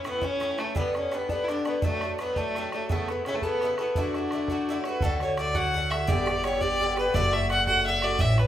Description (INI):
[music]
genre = celtic folk, Celtic jig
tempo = 113 BPM (dotted quarters)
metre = 6/8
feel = straight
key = D major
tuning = A4 = 441 Hz
[part]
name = rich fiddle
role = melody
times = 0.0-8.5 s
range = A3 to F#5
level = -27 LUFS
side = left 1 dB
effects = none
[part]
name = Irish bouzouki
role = accompaniment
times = 0.0-8.5 s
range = G2 to A4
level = -30 LUFS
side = equal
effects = none
[part]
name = bodhran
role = percussion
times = 0.1-8.5 s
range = none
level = -32 LUFS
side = right 1 dB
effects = none
[part]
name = upright bass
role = bass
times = 5.0-8.5 s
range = F#1 to D2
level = -28 LUFS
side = equal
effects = none
[sound]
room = wet large studio reverb, RT60 1.1 s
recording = band playing live in one room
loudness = -24 LUFS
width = side -11 dB against mid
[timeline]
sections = 0.0-5.0 A section; 5.0-8.5 B section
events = none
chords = 0.0 A; 0.8 G; 1.8 D; 2.9 Aadd9; 4.0 Dadd9; 5.0 D; 6.1 G; 7.1 D/F#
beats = 0.22 | 0.76 1.29 | 1.83 2.36 | 2.89 3.42 | 3.96 4.49 | 5.02 5.55 | 6.08 6.61 | 7.14 7.66 | 8.19